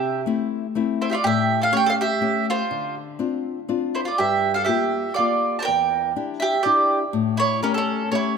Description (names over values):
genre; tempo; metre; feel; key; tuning
italian folk, Italian serenade; 122 BPM; 3/4; straight; unclear; A4 = 442 Hz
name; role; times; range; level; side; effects
mandolin; melody; 0.0-8.4 s; A4 to A5; -22 LUFS; right 3 dB; none
mandolin; second line; 0.0-8.4 s; C#4 to C#5; -25 LUFS; right 6 dB; none
nylon-string guitar; accompaniment; 0.0-8.4 s; E2 to G4; -25 LUFS; left 8 dB; none
room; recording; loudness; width
light reverb; close, detailed microphones; -19 LUFS; side -6 dB against mid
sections
0.0-8.4 A section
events
none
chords
0.0 C6; 1.2 A7; 2.7 Dm7; 4.2 Gm7; 5.7 Em7b5; 7.1 A7